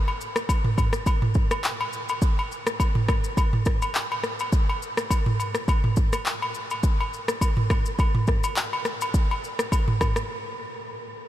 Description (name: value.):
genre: afrobeats.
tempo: 104 BPM.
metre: 4/4.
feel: swing 55% on 16ths.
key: none.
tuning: none.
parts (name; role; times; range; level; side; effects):
agogo bells and woodblock; percussion; 0.1-10.2 s; none; -31 LUFS; left 2 dB; none.
afro-pop drum kit; drums; 0.2-10.3 s; handclaps, kick drum, rim click, shaker, toms; -23 LUFS; equal; none.
room: light reverb, digital ambience.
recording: none.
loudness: -22 LUFS.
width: side -13 dB against mid.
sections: 0.0-11.3 A section.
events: break 10.3-11.3.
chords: none.